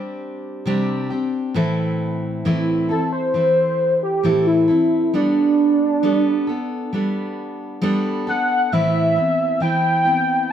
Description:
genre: acoustic folk duo or small band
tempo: 67 BPM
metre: 4/4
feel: straight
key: A minor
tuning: A4 = 439 Hz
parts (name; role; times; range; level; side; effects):
- picked steel-string acoustic guitar; accompaniment; 0.0-10.5 s; A2 to A4; -21 LUFS; equal; none
- warm velvety synth lead; melody; 2.9-10.5 s; D4 to G5; -17 LUFS; right 1 dB; chorus, plate reverb
room: moderate large studio reverb, RT60 1.0 s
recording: none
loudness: -17 LUFS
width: side -9 dB against mid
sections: 0.0-8.7 A section; 8.7-10.5 B section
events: soft synth lead solo 0.0-8.7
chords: 0.0 Csus2; 1.6 Am; 5.1 Gadd9; 8.7 Amadd9

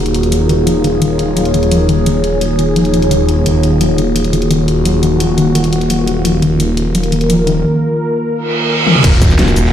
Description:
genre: dark technical drum and bass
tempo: 172 BPM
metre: 4/4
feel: straight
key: Eb minor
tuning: A4 = 439 Hz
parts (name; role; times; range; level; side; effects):
- sweeping resonant pad; sustained chords; 0.0-9.7 s; Eb3 to Bb4; -16 LUFS; equal; chorus, sidechain pumping
- soft round pluck; arpeggios; 0.0-7.6 s; Eb3 to Gb3; -17 LUFS; left 2 dB; chorus, sidechain pumping, dub echo
- phased detuned saw bass; bass; 0.0-9.7 s; Eb1; -16 LUFS; equal; phaser, sidechain pumping
- warbly tape-like pad; texture; 0.0-7.6 s; Eb4 to Db5; -19 LUFS; left 1 dB; chorus, built-in reverb, sidechain pumping
- dubstep drum kit; drums; 0.1-9.6 s; crash cymbal, hi-hat, shaker, snare drum, toms; -20 LUFS; left 2 dB; none
- reverse cymbal and sub drop; sound effects; 8.5-9.7 s; none; -15 LUFS; right 3 dB; none
- crunchy breakbeat drum kit; drums; 9.0-9.7 s; ride cymbal, snare drum; -26 LUFS; equal; none
- electronic kick drum; drums; 9.0-9.3 s; none; -12 LUFS; equal; distortion
room: light reverb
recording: played on a big sound system in a bare room, stone room reverb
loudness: -10 LUFS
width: side -10 dB against mid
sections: 0.0-9.0 A section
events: filter sweep on analog synth pad 0.0-9.0; filter sweep on synth pluck 0.0-9.0; reverse cymbal 8.5-9.0; drum fill 8.9; impact 9.0-9.7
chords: 0.0 Ebmadd9

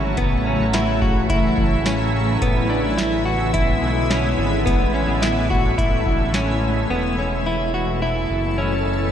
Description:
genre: dream pop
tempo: 107 BPM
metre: 4/4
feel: straight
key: unclear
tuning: A4 = 440 Hz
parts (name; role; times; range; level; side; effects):
- shimmering ambient pad; sustained chords; 0.0-9.1 s; B2 to A4; -22 LUFS; equal; chorus, built-in reverb
- direct-recorded clean electric guitar; arpeggios; 0.0-9.1 s; B3 to F#4; -23 LUFS; left 2 dB; wide subtle chorus, ping-pong delay
- fat analog bass; bass; 0.0-9.1 s; E1 to B1; -23 LUFS; equal; none
- booming analog drum machine; drums; 0.2-6.5 s; hi-hat, kick drum, snare drum, tambourine; -23 LUFS; equal; none
room: moderate lush hall reverb, RT60 2.4 s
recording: dreamy mix soaked in reverb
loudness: -17 LUFS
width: side -9 dB against mid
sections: 0.0-6.9 A section; 6.9-9.1 B section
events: none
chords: 0.2 F#m7/A; 2.4 E7/A; 4.7 Dmaj9/A; 5.8 Amaj7; 6.9 Esus4

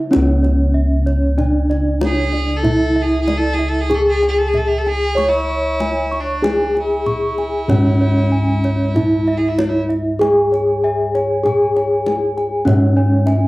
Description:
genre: Javanese gamelan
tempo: 48 BPM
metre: 4/4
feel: straight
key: C# pelog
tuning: A4 = 440 Hz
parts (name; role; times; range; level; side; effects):
- gamelan-type bronze metallophone; melody; 0.0-13.5 s; C#4 to C#5; -17 LUFS; equal; none
- gamelan-type bronze metallophone; arpeggios; 0.0-13.5 s; C#5 to C#6; -26 LUFS; right 3 dB; plate reverb
- gamelan-type bossed gongs; bass; 0.0-13.5 s; C#2 to C#5; -18 LUFS; equal; none
- kendang; percussion; 0.1-13.5 s; none; -25 LUFS; left 2 dB; none
- rich fiddle; second line; 2.0-9.8 s; D4 to A4; -24 LUFS; equal; none
- gamelan-type bossed gongs; arpeggios; 10.2-13.5 s; C#5 to G#5-30c; -25 LUFS; left 2 dB; plate reverb
room: moderate studio reverb, RT60 0.6 s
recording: home recording on cassette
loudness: -14 LUFS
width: side -19 dB against mid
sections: 0.1-13.5 A section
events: none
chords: none

